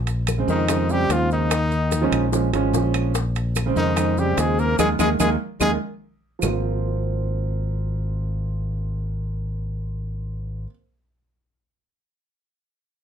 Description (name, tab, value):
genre	Afro-Cuban jazz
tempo	146 BPM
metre	4/4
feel	straight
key	Ab major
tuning	A4 = 440 Hz
part	modern bright fingered electric bass	bass	0.0-10.7 s	Ab1 to F2	-24 LUFS	left 1 dB	none
part	bongos	percussion	0.1-6.5 s	none	-31 LUFS	left 9 dB	none
part	congas	percussion	0.1-6.5 s	none	-31 LUFS	equal	none
part	maracas	percussion	0.1-6.5 s	none	-34 LUFS	right 8 dB	none
part	timbales	percussion	0.1-6.5 s	none	-30 LUFS	right 9 dB	none
part	claves	percussion	0.3-6.5 s	none	-34 LUFS	right 3 dB	none
part	warm grand piano	accompaniment	0.4-10.7 s	Db3 to Db4	-25 LUFS	right 6 dB	none
part	clear trumpet	melody	0.5-5.7 s	Eb4 to Bb4	-24 LUFS	left 1 dB	none
part	breathy tenor saxophone	second line	0.5-5.7 s	Eb3 to Bb3	-27 LUFS	left 7 dB	none
room	light reverb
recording	close, detailed microphones, faint mains hum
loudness	-20 LUFS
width	side -8 dB against mid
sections	0.0-6.4 A section; 6.4-9.7 B section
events	band accent 4.8-6.4; drum fill 6.2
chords	0.0 Bbm9; 1.5 Eb7sus4; 3.2 Bbm9; 4.8 Ebsus4; 6.4 Ab69